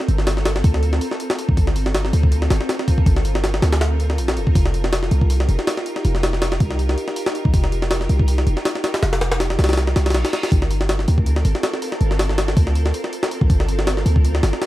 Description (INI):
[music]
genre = drum and bass, jungle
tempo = 161 BPM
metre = 4/4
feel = swing 54% on 16ths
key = G minor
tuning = A4 = 440 Hz
[part]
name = granular cloud pad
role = sustained chords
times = 0.0-14.7 s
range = C4 to Bb4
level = -27 LUFS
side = equal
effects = built-in reverb
[part]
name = jungle sampler-style drum kit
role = drums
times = 0.0-14.7 s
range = hi-hat, kick drum, snare drum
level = -20 LUFS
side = equal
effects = small room reverb
[part]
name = warm 808-style bass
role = bass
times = 0.1-14.5 s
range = F1 to D2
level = -18 LUFS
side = equal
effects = none
[part]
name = reverse cymbal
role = sound effects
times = 10.0-10.5 s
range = none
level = -34 LUFS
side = right 2 dB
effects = none
[sound]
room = light reverb, digital ambience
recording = dark, warm production, vinyl crackle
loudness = -16 LUFS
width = side -16 dB against mid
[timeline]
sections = 0.0-14.7 A section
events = reverse cymbal 10.0-10.5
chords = 0.0 Gm11; 4.6 F9sus4; 10.5 Gm11